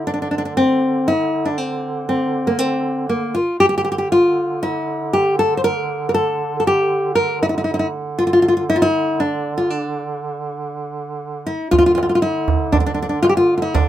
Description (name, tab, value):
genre	Arabic maqam ensemble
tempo	119 BPM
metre	4/4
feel	straight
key	D maqam bayati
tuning	A4 = 441 Hz
part	nylon-string guitar	melody	0.0-13.9 s	Bb3 to C5	-16 LUFS	left 1 dB	none
part	warm duduk	drone	0.0-13.9 s	D3	-26 LUFS	right 4 dB	none
part	darbuka	percussion	11.7-13.9 s	none	-20 LUFS	right 5 dB	none
room	light reverb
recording	minimal, uncompressed stereo recording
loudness	-16 LUFS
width	side -12 dB against mid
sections	0.0-11.7 A section; 11.7-13.9 A section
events	none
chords	none